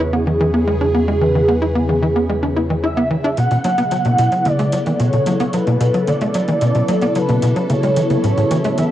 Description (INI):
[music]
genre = ambient, sequencer-driven space music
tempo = 111 BPM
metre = 4/4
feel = straight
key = B dorian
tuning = A4 = 437 Hz
[part]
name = breathy flute-like synth lead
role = melody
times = 0.0-8.9 s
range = G#4 to F#5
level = -21 LUFS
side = right 1 dB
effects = ensemble chorus, cassette tape, shimmer reverb, ping-pong delay
[part]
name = phased analog pad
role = sustained chords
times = 0.0-8.9 s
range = C#3 to A4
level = -20 LUFS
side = equal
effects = phaser, chorus, cassette tape, shimmer reverb
[part]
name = tight sequencer bass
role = riff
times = 0.0-8.9 s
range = A2 to E4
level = -18 LUFS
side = equal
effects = wide subtle chorus, cassette tape, shimmer reverb, ping-pong delay
[part]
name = warm sub bass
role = bass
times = 0.0-3.3 s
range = E2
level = -22 LUFS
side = equal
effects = none
[part]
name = electronic hi-hat and congas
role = percussion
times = 3.4-8.9 s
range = none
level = -29 LUFS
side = right 2 dB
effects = cassette tape
[sound]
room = wet booth ambience, RT60 0.2 s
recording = home recording on cassette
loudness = -14 LUFS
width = side -12 dB against mid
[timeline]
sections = 0.0-3.4 A section; 3.4-8.9 B section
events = none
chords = 0.0 E; 3.4 Bm7; 7.7 A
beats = 0.13 0.67 | 1.21 1.75 2.29 2.83 | 3.38 3.92 4.46 5.00 | 5.54 6.08 6.62 7.16 | 7.70 8.24 8.78